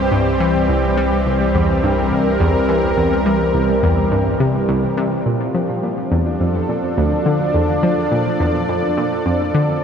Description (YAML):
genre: ambient, sequencer-driven space music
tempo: 105 BPM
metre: 4/4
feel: straight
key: unclear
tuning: A4 = 445 Hz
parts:
  - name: lush unison pad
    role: sustained chords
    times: 0.0-9.8 s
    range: E3 to D5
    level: -17 LUFS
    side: equal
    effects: chorus
  - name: round analog bass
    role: bass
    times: 0.0-5.2 s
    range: C2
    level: -24 LUFS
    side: equal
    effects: none
  - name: wind-like tuned noise texture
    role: texture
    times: 0.0-5.3 s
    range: D5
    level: -35 LUFS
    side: right 5 dB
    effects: none
  - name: analog pluck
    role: riff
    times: 0.1-9.8 s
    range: C2 to G3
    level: -19 LUFS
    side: equal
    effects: chorus, analog delay
  - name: concert harp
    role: arpeggios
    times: 5.3-9.8 s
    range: A3 to F4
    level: -34 LUFS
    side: left 3 dB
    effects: none
room: wet cathedral reverb, RT60 5.8 s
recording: in a vast, echoing space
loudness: -15 LUFS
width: side -7 dB against mid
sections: 0.0-5.3 A section; 5.3-9.8 B section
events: none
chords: 0.0 C; 5.3 Bbmaj7